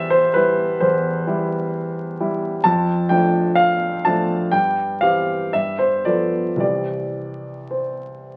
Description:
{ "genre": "classical, romantic character piece for solo piano", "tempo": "54-67 BPM", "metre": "4/4", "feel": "rubato", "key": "C major", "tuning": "A4 = 440 Hz", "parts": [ { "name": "warm concert grand piano", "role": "solo", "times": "0.0-8.4 s", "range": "C2 to A5", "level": "-20 LUFS", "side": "equal", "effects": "none" } ], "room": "moderate large studio reverb, RT60 1.0 s", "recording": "very old 78 rpm record, vinyl crackle", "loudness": "-20 LUFS", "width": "mono", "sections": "0.0-8.4 A section", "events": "none", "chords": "0.0 C/E; 2.6 Dm/F; 4.5 C/G; 5.5 G9; 6.6 C", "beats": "0.82 1.74 | 2.65 3.58 4.53 5.54 | 6.61 7.72" }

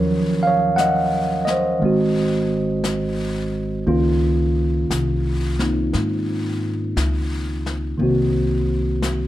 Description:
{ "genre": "jazz ballad", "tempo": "58 BPM", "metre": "4/4", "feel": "swing 67% on 8ths", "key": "unclear", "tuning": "A4 = 440 Hz", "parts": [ { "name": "tine electric piano", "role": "accompaniment", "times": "0.0-9.3 s", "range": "Eb3 to Gb5", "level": "-19 LUFS", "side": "right 1 dB", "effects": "none" }, { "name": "upright bass", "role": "bass", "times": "0.0-9.3 s", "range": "Ab1 to Ab2", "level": "-24 LUFS", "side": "left 1 dB", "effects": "none" }, { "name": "jazz brush drum kit", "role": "drums", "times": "0.8-9.3 s", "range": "brushed snare drum, hi-hat, snare drum", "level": "-32 LUFS", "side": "left 3 dB", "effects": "none" } ], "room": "moderate studio reverb, RT60 0.8 s", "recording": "dark, warm production", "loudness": "-18 LUFS", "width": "side -14 dB against mid", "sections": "0.0-9.3 A section", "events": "none", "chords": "0.0 Ebm9; 1.8 Ab7; 3.9 Db69; 8.0 Cm7b5", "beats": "0.78 1.81 2.84 | 3.87 4.90 5.93 6.96 | 7.99 9.02" }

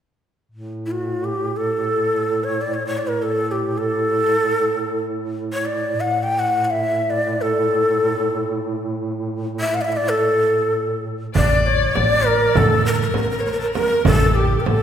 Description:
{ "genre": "Turkish makam ensemble", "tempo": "free time", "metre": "none", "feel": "none", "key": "A makam hicaz", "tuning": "A4 = 441 Hz", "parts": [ { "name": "mellow duduk", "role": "drone", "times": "0.5-11.4 s", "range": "A2", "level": "-26 LUFS", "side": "right 2 dB", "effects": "none" }, { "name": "breathy shakuhachi", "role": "melody", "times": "0.9-14.8 s", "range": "E4 to G5", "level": "-19 LUFS", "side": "equal", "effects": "none" }, { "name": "rich violin", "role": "second line", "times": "11.4-14.8 s", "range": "G4 to D5", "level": "-24 LUFS", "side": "left 6 dB", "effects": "none" }, { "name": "upright bass", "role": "bass", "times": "11.4-14.8 s", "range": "A1 to A2", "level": "-20 LUFS", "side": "right 1 dB", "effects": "none" }, { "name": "frame drum", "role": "percussion", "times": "11.4-14.8 s", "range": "none", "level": "-22 LUFS", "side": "right 2 dB", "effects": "none" } ], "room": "wet scoring stage reverb, RT60 1.8 s", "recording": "recorded in a church or concert hall", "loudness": "-17 LUFS", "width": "side -9 dB against mid", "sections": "0.5-11.4 A section; 11.4-14.8 B section", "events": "none", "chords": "none", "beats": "free time" }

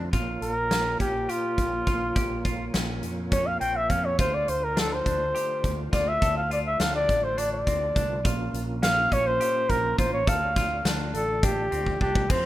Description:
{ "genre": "progressive instrumental, band music in an uneven meter", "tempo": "207 BPM (eighths)", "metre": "7/8", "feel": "straight", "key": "D minor", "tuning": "A4 = 440 Hz", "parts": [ { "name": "tonewheel organ", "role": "accompaniment", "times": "0.0-12.5 s", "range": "Bb2 to D5", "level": "-35 LUFS", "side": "right 2 dB", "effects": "chorus vibrato, stopped rotary speaker" }, { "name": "semi-hollow electric guitar", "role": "arpeggios", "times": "0.0-12.5 s", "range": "C4 to A4", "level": "-36 LUFS", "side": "left 1 dB", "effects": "ping-pong delay" }, { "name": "mellow fretless electric bass", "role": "bass", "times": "0.0-12.5 s", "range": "A1 to F2", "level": "-32 LUFS", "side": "equal", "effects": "none" }, { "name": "huge arena drum kit", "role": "drums", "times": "0.1-12.4 s", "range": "crash cymbal, hi-hat, kick drum, snare drum", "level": "-28 LUFS", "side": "equal", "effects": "none" }, { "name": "mellow trumpet", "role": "melody", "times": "0.4-12.5 s", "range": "F4 to G5", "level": "-26 LUFS", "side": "equal", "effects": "ping-pong delay" } ], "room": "light reverb", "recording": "rough home demo mix", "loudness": "-23 LUFS", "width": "side -14 dB against mid", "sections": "0.0-12.3 A section", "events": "trumpet solo 0.0-12.3; drum fill 11.9-12.3", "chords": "0.1 Bbm; 4.2 Dm7; 8.2 Bbm; 10.3 Dm", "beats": "| 0.13 0.42 0.71 1.00 1.29 1.58 1.87 | 2.16 2.45 2.74 3.03 3.32 3.61 3.90 | 4.19 4.48 4.77 5.06 5.35 5.64 5.93 | 6.22 6.51 6.80 7.09 7.38 7.67 7.96 | 8.25 8.54 8.83 9.12 9.40 9.70 9.98 | 10.27 10.56 10.85 11.14 11.43 11.72 12.01 | 12.30" }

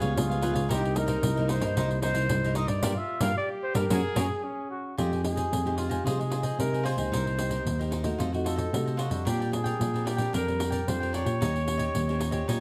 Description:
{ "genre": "samba and choro", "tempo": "112 BPM", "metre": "4/4", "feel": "straight", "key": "F minor", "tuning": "A4 = 440 Hz", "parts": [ { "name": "brilliant trombone", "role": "second line", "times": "0.0-5.0 s", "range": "Db4 to Ab4", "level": "-39 LUFS", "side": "equal", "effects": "none" }, { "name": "cavaquinho", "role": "accompaniment", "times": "0.0-12.6 s", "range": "D4 to G5", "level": "-40 LUFS", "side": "equal", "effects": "none" }, { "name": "nylon-string guitar", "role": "accompaniment", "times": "0.0-12.6 s", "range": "G2 to C5", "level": "-37 LUFS", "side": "equal", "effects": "none" }, { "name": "overdriven tine electric piano", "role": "bass", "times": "0.0-12.6 s", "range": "C2 to C3", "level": "-32 LUFS", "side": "equal", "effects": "none" }, { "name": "pandeiro", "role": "percussion", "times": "0.0-12.6 s", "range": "none", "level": "-35 LUFS", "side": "equal", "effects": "none" }, { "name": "dark trumpet", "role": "melody", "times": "0.2-12.6 s", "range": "F4 to F5", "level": "-35 LUFS", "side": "equal", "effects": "none" } ], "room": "moderate large studio reverb, RT60 1.2 s", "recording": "close, detailed microphones", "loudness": "-28 LUFS", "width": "mono", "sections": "0.0-5.0 A section; 5.0-12.6 B section", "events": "band accent 2.8-5.0", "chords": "0.0 Db7#11; 0.7 Cm7; 2.8 Gm7; 3.9 Gbadd9; 5.0 Fm9; 7.1 Cm7; 8.2 F7b9; 9.3 Bb69; 11.4 Eb13", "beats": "0.17 | 0.70 1.24 1.77 2.31 | 2.84 3.38 3.91 4.45 | 4.98 5.52 6.06 6.59 | 7.13 7.67 8.20 8.74 | 9.27 9.81 10.35 10.88 | 11.42 11.95 12.49" }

